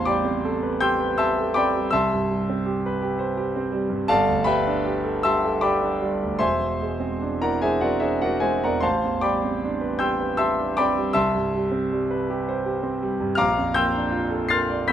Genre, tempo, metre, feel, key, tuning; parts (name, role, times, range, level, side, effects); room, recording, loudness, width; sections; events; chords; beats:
classical, impressionist solo piano; 73-84 BPM; 3/4; rubato; A minor; A4 = 440 Hz
clear concert grand piano; solo; 0.0-14.9 s; E1 to C7; -20 LUFS; equal
light reverb; -20 LUFS; side -10 dB against mid
0.0-14.9 A section
0.0 Am11; 1.9 Cmaj7; 4.1 Gadd9; 6.4 Eaug7; 8.8 Am11; 11.1 Cmaj7; 13.4 Bbmaj7
0.40 1.16 | 1.90 2.63 3.35 | 4.09 4.84 5.61 | 6.40 7.22 8.03 | 8.82 9.62 10.38 | 11.15 11.91 12.65 | 13.39 14.14 14.88